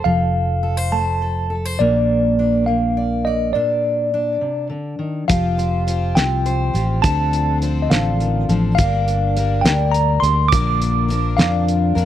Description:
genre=indie folk with a building arrangement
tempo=69 BPM (dotted quarters)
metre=6/8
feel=straight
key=unclear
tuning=A4 = 440 Hz
part: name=tine electric piano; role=melody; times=0.0-12.1 s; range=D5 to D6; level=-20 LUFS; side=equal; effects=medium stereo tremolo
part: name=fingerpicked steel-string acoustic guitar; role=accompaniment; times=0.0-8.8 s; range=Bb2 to D5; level=-22 LUFS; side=equal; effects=none
part: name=fingered electric bass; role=bass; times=0.0-12.1 s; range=F1 to F2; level=-20 LUFS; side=equal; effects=none
part: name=picked plugged-in twelve-string acoustic guitar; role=accompaniment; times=5.3-12.1 s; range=G2 to Bb4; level=-25 LUFS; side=left 9 dB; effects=none
part: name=cloth-damped thuddy drum kit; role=drums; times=5.3-12.1 s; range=hi-hat, kick drum, snare drum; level=-18 LUFS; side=right 1 dB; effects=none
room=little or no reverb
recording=dry, close 1970s-style studio recording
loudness=-16 LUFS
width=side -11 dB against mid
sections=0.0-5.3 A section; 5.3-12.1 B section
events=break 3.6-5.3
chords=0.0 F; 1.8 Bb; 5.3 Fsus2; 7.0 Dm7; 8.8 Gm; 10.5 Bb

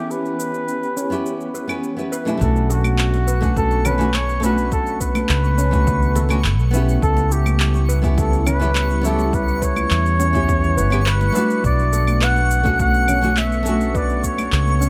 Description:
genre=sunset chillout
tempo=104 BPM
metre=4/4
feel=straight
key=B minor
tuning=A4 = 440 Hz
part: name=breathy flugelhorn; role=melody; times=0.0-14.9 s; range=F#4 to F#5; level=-25 LUFS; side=equal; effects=digital delay
part: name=nylon-string guitar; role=accompaniment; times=0.0-14.9 s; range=B2 to B4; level=-27 LUFS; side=equal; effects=none
part: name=soft string machine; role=sustained chords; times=0.0-14.9 s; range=E3 to G4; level=-31 LUFS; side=equal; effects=ensemble chorus
part: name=steel pan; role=arpeggios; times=0.0-14.9 s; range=C#4 to B4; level=-33 LUFS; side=equal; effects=digital delay
part: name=electronic shaker, claves and handclaps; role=drums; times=0.1-14.9 s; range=none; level=-29 LUFS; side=equal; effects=none
part: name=mellow fretless electric bass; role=bass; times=2.4-14.9 s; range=F#1 to E2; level=-21 LUFS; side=equal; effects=ensemble chorus
part: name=electronic kick drum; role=drums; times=2.4-14.4 s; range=none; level=-25 LUFS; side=equal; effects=overdrive
part: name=twinkling granular texture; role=texture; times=3.3-14.9 s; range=C#6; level=-38 LUFS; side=equal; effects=built-in reverb
part: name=congas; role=percussion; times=2.7-14.5 s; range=none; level=-32 LUFS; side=equal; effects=none
room=light reverb, small room ambience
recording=none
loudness=-18 LUFS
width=mono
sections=0.0-2.4 A section; 2.4-14.9 B section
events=filter sweep on steel pan 0.0-2.4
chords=0.0 C#m7b5; 2.4 Bm9; 7.0 C#m7b5; 11.6 Bm9

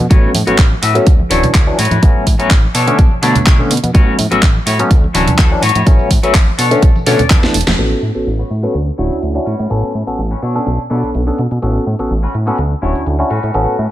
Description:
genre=filtered disco house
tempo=125 BPM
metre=4/4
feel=swing 53% on 16ths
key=A major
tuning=A4 = 437 Hz
part: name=fat analog bass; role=bass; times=0.0-13.9 s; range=D1 to B2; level=-17 LUFS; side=equal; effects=tube saturation, sidechain pumping, low-pass filter
part: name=tambourine and congas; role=percussion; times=0.0-7.8 s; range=none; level=-22 LUFS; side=right 1 dB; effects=sidechain pumping on perc, low-pass filter on perc
part: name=barky tine electric piano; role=accompaniment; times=0.1-13.8 s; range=D3 to C#5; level=-18 LUFS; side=left 1 dB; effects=overdrive, phaser, vintage 12-bit sampler grit, sidechain pumping, low-pass filter
part: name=semi-hollow electric guitar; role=riff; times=0.1-13.9 s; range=C#4 to A5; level=-20 LUFS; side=left 3 dB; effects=lush chorus, sidechain pumping, low-pass filter
part: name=electronic kick drum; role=drums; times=0.1-7.4 s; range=none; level=-10 LUFS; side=equal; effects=none
part: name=house drum kit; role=drums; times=0.1-13.6 s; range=handclaps, hi-hat, snare drum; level=-18 LUFS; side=right 1 dB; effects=sidechain pumping on hats, low-pass filter on hats, low-pass filter on snare, low-pass filter on room
room=light reverb, digital ambience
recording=faint mains hum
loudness=-10 LUFS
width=side -13 dB against mid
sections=0.0-7.8 A section; 7.8-13.9 B section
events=clean electric guitar fill 6.8-7.8; drum fill 7.4-7.8; band accent 7.7; filter sweep 7.8-13.9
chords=0.1 A69; 1.1 Dmaj9; 1.8 A69; 2.7 Bm9; 3.9 A69; 4.9 Dmaj9; 5.6 A69; 6.6 Bm9; 7.3 E7sus4; 7.8 A69; 8.7 Dmaj9; 9.5 A69; 10.4 Bm9; 11.6 A69; 12.6 Dmaj9; 13.3 A69

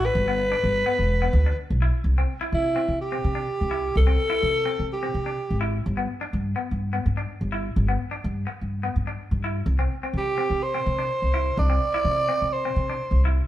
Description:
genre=highlife guitar band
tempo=126 BPM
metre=4/4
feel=straight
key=C major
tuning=A4 = 443 Hz
part: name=growling alto saxophone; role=melody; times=0.0-5.6, 10.2-13.2 s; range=E4 to D5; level=-24 LUFS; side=right 1 dB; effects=none
part: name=clean electric guitar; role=accompaniment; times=0.0-13.4 s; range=B3 to E4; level=-32 LUFS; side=left 3 dB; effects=none
part: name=upright bass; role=bass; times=0.0-13.4 s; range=E1 to C3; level=-24 LUFS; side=equal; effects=none
room=moderate stone room reverb, RT60 1.0 s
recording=band playing live in one room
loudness=-22 LUFS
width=side -13 dB against mid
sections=0.0-2.1 A section; 2.1-13.5 B section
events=none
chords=0.2 G; 2.1 C; 5.9 G; 9.7 N.C.

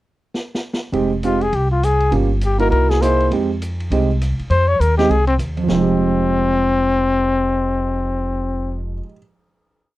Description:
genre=jazz, small-group swing and bop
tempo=202 BPM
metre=4/4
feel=swing 60% on 8ths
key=F minor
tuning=A4 = 442 Hz
part: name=vintage drum kit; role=drums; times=0.3-5.8 s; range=hi-hat, ride cymbal, rim click, snare drum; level=-30 LUFS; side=equal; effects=none
part: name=warm concert grand piano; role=accompaniment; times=0.9-9.2 s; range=F2 to G#4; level=-20 LUFS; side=right 4 dB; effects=none
part: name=upright bass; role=bass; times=0.9-9.0 s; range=F1 to F2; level=-20 LUFS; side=equal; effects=none
part: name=mellow trumpet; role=melody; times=1.3-8.8 s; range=C4 to Db5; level=-18 LUFS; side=left 3 dB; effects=none
room=little or no reverb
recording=dry, close 1970s-style studio recording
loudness=-15 LUFS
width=side -16 dB against mid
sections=0.0-0.9 pickup bar; 0.9-5.7 A section; 5.7-8.1 final chord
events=drum fill 0.3-0.9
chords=0.0 N.C.; 0.9 Fm9; 2.1 Gm7b5; 2.7 C7alt; 3.3 Fm9

